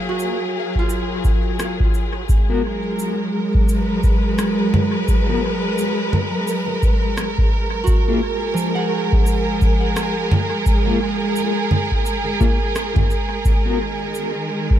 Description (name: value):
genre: ambient dub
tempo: 86 BPM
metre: 4/4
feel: swing 59% on 16ths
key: G# dorian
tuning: A4 = 435 Hz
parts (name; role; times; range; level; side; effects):
- warm symphonic string section; sustained chords; 0.0-14.8 s; D#3 to B4; -21 LUFS; right 1 dB; none
- concert harp; arpeggios; 0.0-3.3, 7.8-12.4 s; E#3 to F#5; -28 LUFS; right 2 dB; ping-pong delay
- electronic cabasa, rim click and congas; drums; 0.2-14.3 s; none; -24 LUFS; right 1 dB; overdrive, dub echo
- electronic kick drum; drums; 0.8-14.8 s; none; -18 LUFS; equal; none
- mellow electric guitar; stabs; 2.5-13.8 s; A#3 to A#4; -27 LUFS; left 4 dB; tremolo, dub echo
room: light reverb, digital ambience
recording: none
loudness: -17 LUFS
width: side -11 dB against mid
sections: 0.0-2.3 A section; 2.3-14.8 B section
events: none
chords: 0.0 F#maj9; 2.3 G#m9; 7.9 F#maj9; 13.5 G#sus2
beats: 0.20 0.90 1.59 | 2.29 2.99 3.69 4.38 | 5.08 5.78 6.48 7.17 | 7.87 8.57 9.27 9.96 | 10.66 11.36 12.06 12.76 | 13.45 14.15